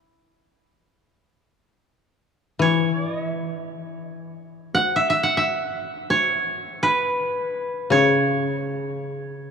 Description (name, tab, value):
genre	japanese traditional, Japanese chamber music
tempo	free time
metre	none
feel	none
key	unclear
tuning	A4 = 440 Hz
part	koto	melody	0.0-9.5 s	E4 to F#5	-21 LUFS	right 2 dB	none
part	koto	accompaniment	2.6-9.5 s	C#3 to E3	-23 LUFS	left 4 dB	none
room	wet cathedral reverb, RT60 4.2 s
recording	dark, warm production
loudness	-20 LUFS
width	side -6 dB against mid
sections	0.0-1.2 A section; 1.2-9.5 A section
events	none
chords	none